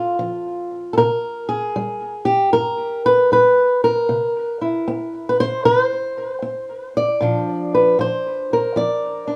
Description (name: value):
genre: acoustic country blues, solo or duo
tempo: 77 BPM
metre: 4/4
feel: swing 66% on 8ths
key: unclear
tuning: A4 = 441 Hz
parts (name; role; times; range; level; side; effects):
- fingerpicked old ladder-braced acoustic guitar; solo; 0.0-9.4 s; G2 to D5; -19 LUFS; equal; tape echo
room: moderate studio reverb, RT60 0.5 s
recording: small room ambience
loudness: -19 LUFS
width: mono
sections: 0.0-9.4 A section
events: none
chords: 0.0 F; 1.0 C; 7.2 Bb